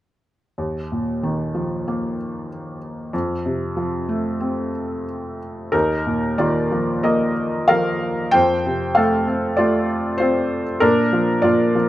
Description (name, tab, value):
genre	classical, lyrical solo piano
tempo	94 BPM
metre	4/4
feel	uneven beats, rubato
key	unclear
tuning	A4 = 441 Hz
part	felt-muted upright piano	solo	0.6-11.9 s	Eb2 to G5	-18 LUFS	equal	none
room	light reverb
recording	close, detailed microphones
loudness	-18 LUFS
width	side -14 dB against mid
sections	0.6-5.7 A section; 5.7-11.9 B section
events	none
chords	0.6 Ebsus2; 3.1 F; 5.7 Ebsus2; 8.3 F; 10.8 Bb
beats	| 0.58 1.23 1.87 2.50 | 3.13 3.76 4.40 5.06 | 5.73 6.39 7.04 7.69 | 8.34 8.97 9.58 10.20 | 10.82 11.43